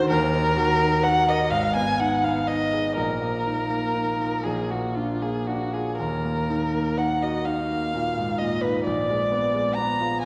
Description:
classical, romantic duo for violin and grand piano; 41 BPM (dotted quarters); 6/8; uneven beats, rubato; Eb minor; A4 = 440 Hz
dark violin; melody; 0.0-10.2 s; F4 to Bb5; -26 LUFS; equal
clear concert grand piano; accompaniment; 0.0-10.2 s; Ab1 to Bb4; -27 LUFS; equal
wet concert hall reverb, RT60 2.0 s; heard from further back in the room; -24 LUFS; mono
0.0-10.2 A section
0.1 Ebm; 1.5 Abm; 3.0 Bbsus4; 4.4 Bb; 6.0 Ebm; 8.9 Bb7b9

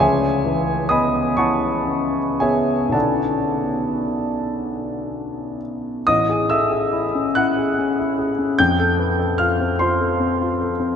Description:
classical, impressionist solo piano; 36-52 BPM (dotted quarters); 6/8; rubato; A4 = 440 Hz
warm grand piano; solo; 0.0-11.0 s; A1 to G6; -18 LUFS; left 1 dB
wet cathedral reverb, RT60 6.7 s; in a vast, echoing space; -17 LUFS; side -7 dB against mid
0.0-6.1 A section; 6.1-11.0 B section
0.0 C#m7; 2.9 Bm11; 6.1 Amaj7; 8.6 Fadd9

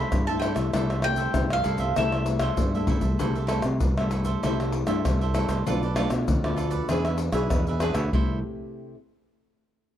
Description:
samba and choro; 97 BPM; 4/4; straight; C major; A4 = 440 Hz
mandolin; melody; 0.0-2.9 s; E5 to B5; -28 LUFS; equal
cavaquinho; accompaniment; 0.0-8.4 s; D4 to E5; -33 LUFS; right 7 dB
nylon-string guitar; accompaniment; 0.0-8.9 s; G2 to G#4; -31 LUFS; left 2 dB
fingered electric bass; bass; 0.0-8.4 s; B1 to C3; -27 LUFS; equal
tube shaker, surdo, pandeiro and tamborim; percussion; 0.1-8.3 s; -27 LUFS; left 1 dB
studio reverb; dry, close 1970s-style studio recording; -22 LUFS; side -11 dB against mid
0.0-3.2 A section; 3.2-8.1 B section; 8.1-10.0 C section
drum fill 2.4-3.2
0.0 C6; 5.7 Bm7b5; 6.9 E7; 8.1 C6

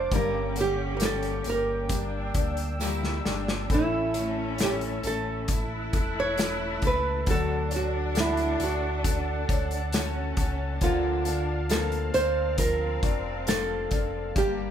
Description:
pop ballad; 68 BPM; 4/4; straight; A4 = 442 Hz
nylon-string guitar; melody; 0.0-14.7 s; E4 to C#5; -28 LUFS; right 2 dB
clear studio cello section; second line; 0.0-14.7 s; Bb3 to E4; -36 LUFS; left 2 dB
dark baby grand piano; accompaniment; 0.0-14.7 s; D3 to C#5; -36 LUFS; left 3 dB
warm analog pad; sustained chords; 0.0-14.7 s; Bb3 to F#6; -37 LUFS; right 1 dB; chorus
fingerpicked steel-string acoustic guitar; arpeggios; 0.0-14.7 s; G2 to A4; -36 LUFS; left 5 dB
sub bass with octave; bass; 0.0-14.7 s; E1 to D2; -32 LUFS; equal
loose indie drum kit; drums; 0.1-14.6 s; hi-hat, kick drum, snare drum; -28 LUFS; equal
tambourine; percussion; 0.6-14.6 s; -43 LUFS; right 4 dB
light reverb; band playing live in one room; -24 LUFS; side -9 dB against mid
0.0-14.7 A section
drum fill 2.8-3.7
0.1 Gm; 3.7 A; 7.3 Dmaj7; 10.8 Bbmaj7/D

